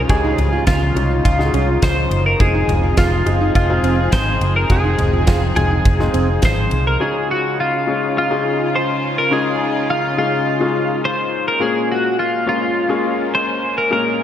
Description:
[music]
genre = piano-driven pop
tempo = 104 BPM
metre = 4/4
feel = straight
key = unclear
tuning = A4 = 440 Hz
[part]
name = clear concert grand piano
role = accompaniment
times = 0.0-14.2 s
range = Bb2 to Bb4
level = -22 LUFS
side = left 4 dB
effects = none
[part]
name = warm studio string section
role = sustained chords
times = 0.0-14.2 s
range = Db3 to Ab4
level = -25 LUFS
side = equal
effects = none
[part]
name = vintage muted fingered electric bass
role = bass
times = 0.0-7.0 s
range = F1 to Db2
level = -18 LUFS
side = right 1 dB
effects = none
[part]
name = twelve-string electric guitar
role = melody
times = 0.1-14.2 s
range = F4 to C5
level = -19 LUFS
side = equal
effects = analog chorus
[part]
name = huge arena drum kit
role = drums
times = 0.1-6.8 s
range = kick drum, ride cymbal, snare drum, toms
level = -19 LUFS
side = equal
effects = none
[part]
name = fingerpicked plugged-in steel-string acoustic guitar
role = riff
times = 0.2-6.3 s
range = C4 to F4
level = -26 LUFS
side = right 6 dB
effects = analog chorus
[sound]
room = wet lush hall reverb, RT60 1.7 s, small room ambience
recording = dreamy mix soaked in reverb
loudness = -15 LUFS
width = side -10 dB against mid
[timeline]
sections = 0.0-7.0 A section; 7.0-14.2 A section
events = none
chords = 0.0 Dbadd9; 2.4 Fm7; 7.0 Dbadd9; 11.6 Bbm7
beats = | 0.10 0.67 1.25 1.82 | 2.40 2.98 3.55 4.13 | 4.70 5.28 5.86 6.43 | 7.01 7.58 8.16 8.73 | 9.31 9.88 10.46 11.03 | 11.61 12.18 12.76 13.33 | 13.90

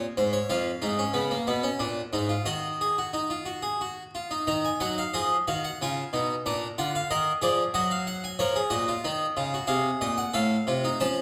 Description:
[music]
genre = classical, baroque-style 3-part fugue for harpsichord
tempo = 91 BPM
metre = 3/4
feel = straight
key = Eb minor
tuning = A4 = 439 Hz
[part]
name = harpsichord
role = solo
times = 0.0-11.2 s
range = F2 to Bb5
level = -28 LUFS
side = equal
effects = none
[sound]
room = wet recital hall reverb, RT60 1.4 s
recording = none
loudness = -28 LUFS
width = mono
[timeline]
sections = 0.0-4.5 A section; 4.5-11.2 B section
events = none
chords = 0.5 Fdim; 1.8 Bb7; 2.5 Ebm; 5.8 Db; 6.5 Bb; 7.8 Ebm/Gb; 8.4 Bbm; 9.7 Ab/C; 10.4 F/A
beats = | 0.47 1.13 1.78 | 2.46 3.13 3.80 | 4.47 5.14 5.80 | 6.45 7.10 7.75 | 8.40 9.05 9.70 | 10.36 11.02

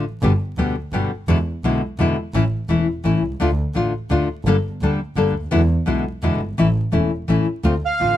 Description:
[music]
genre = tango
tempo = 170 BPM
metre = 3/4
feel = rubato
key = unclear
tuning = A4 = 440 Hz
[part]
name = nylon-string guitar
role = accompaniment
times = 0.0-8.2 s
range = B2 to A4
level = -19 LUFS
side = left 3 dB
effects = none
[part]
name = dark double bass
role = bass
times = 0.2-8.2 s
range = E1 to E2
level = -21 LUFS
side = right 1 dB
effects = none
[part]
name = bandoneon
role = melody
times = 7.9-8.2 s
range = F5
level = -18 LUFS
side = right 4 dB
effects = none
[sound]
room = little or no reverb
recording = close, detailed microphones, vinyl crackle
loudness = -18 LUFS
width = side -12 dB against mid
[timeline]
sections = 0.0-7.6 A section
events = none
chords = 0.2 G; 1.3 E7; 2.3 A; 3.4 Dm; 4.5 Gmadd9; 5.5 E7; 6.6 A; 7.6 Dm7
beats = | 0.22 0.57 0.92 | 1.28 1.63 1.98 | 2.33 2.69 3.04 | 3.40 3.75 4.11 | 4.46 4.81 5.16 | 5.52 5.87 6.22 | 6.58 6.93 7.29 | 7.64 8.00

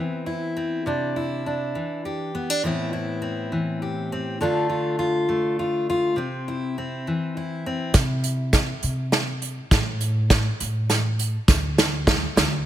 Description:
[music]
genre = indie folk with a building arrangement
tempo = 68 BPM (dotted quarters)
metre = 6/8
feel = straight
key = C major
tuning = A4 = 439 Hz
[part]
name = fingerpicked steel-string acoustic guitar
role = accompaniment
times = 0.0-9.7 s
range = A2 to G4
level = -24 LUFS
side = left 1 dB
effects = none
[part]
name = upright bass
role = bass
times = 7.9-12.7 s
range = D2 to C3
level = -24 LUFS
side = equal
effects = none
[part]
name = unplugged drum kit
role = drums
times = 7.9-12.5 s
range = hi-hat, kick drum, snare drum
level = -20 LUFS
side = right 1 dB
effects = none
[sound]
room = light reverb, small room ambience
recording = none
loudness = -21 LUFS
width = side -12 dB against mid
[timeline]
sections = 0.0-8.0 A section; 8.0-12.7 B section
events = build-up 8.0-12.7; drum fill 8.0-12.7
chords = 0.0 Cmaj7; 0.9 Cadd9; 2.6 Amadd9; 4.4 Dm; 6.2 C; 9.7 N.C.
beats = | 0.86 1.75 | 2.64 3.52 | 4.41 5.29 | 6.18 7.07 | 7.95 8.84 | 9.72 10.61 | 11.49 12.38

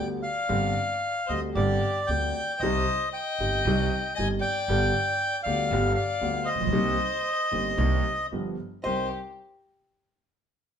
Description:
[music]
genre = tango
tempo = 115 BPM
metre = 4/4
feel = rubato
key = C minor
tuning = A4 = 440 Hz
[part]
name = bandoneon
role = melody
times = 0.0-9.1 s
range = C5 to Ab5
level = -28 LUFS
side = equal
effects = none
[part]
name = warm violin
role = second line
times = 0.0-9.1 s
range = G4 to Eb5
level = -34 LUFS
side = left 6 dB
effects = none
[part]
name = warm concert grand piano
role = accompaniment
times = 0.0-9.1 s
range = G1 to Bb4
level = -29 LUFS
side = equal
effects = none
[part]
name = upright bass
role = bass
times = 0.0-9.1 s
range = G1 to D2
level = -30 LUFS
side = right 2 dB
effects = none
[part]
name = hollow-body jazz guitar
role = second line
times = 8.8-9.1 s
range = Eb5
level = -39 LUFS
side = right 2 dB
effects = none
[sound]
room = wet studio reverb, RT60 0.8 s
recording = band playing live in one room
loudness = -24 LUFS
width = side -8 dB against mid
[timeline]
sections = 0.0-8.9 A section; 8.9-10.8 B section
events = none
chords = 0.0 G; 0.5 Gsus4; 2.6 Cm; 4.7 G; 6.7 Cm7; 8.3 G7; 8.9 Cm7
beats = | 0.50 1.03 1.56 2.08 | 2.61 3.13 3.65 4.17 | 4.68 5.20 5.71 6.22 | 6.74 7.25 7.78 8.32 | 8.85

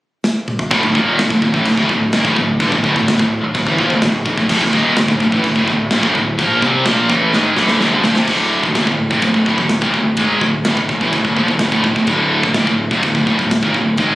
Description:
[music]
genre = heavy metal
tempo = 127 BPM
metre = 4/4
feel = straight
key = D minor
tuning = A4 = 439 Hz
[part]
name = tight metal drum kit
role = drums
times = 0.2-14.1 s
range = china cymbal, crash cymbal, kick drum, ride cymbal, snare drum, toms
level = -20 LUFS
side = equal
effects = none
[part]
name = scooped high-gain guitar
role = riff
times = 0.7-14.2 s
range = D2 to C4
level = -18 LUFS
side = left 3 dB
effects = distortion
[part]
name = scooped high-gain guitar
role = riff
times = 0.7-14.2 s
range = D2 to C4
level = -16 LUFS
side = right 2 dB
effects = distortion
[part]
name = growling picked electric bass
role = bass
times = 0.7-14.2 s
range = D1 to C2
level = -22 LUFS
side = equal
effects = overdrive
[sound]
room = studio reverb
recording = recorded on a phone in the room, compression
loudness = -12 LUFS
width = side -17 dB against mid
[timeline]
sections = 0.7-8.3 A section; 8.3-14.2 B section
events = drum fill 0.2-0.7, 7.3-8.3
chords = 0.0 N.C.; 0.7 Dm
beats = 0.25 | 0.72 1.19 1.66 2.13 | 2.61 3.08 3.55 4.02 | 4.50 4.97 5.44 5.91 | 6.39 6.86 7.33 7.81 | 8.28 8.76 9.23 9.71 | 10.18 10.65 11.13 11.61 | 12.08 12.56 13.03 13.51 | 13.99

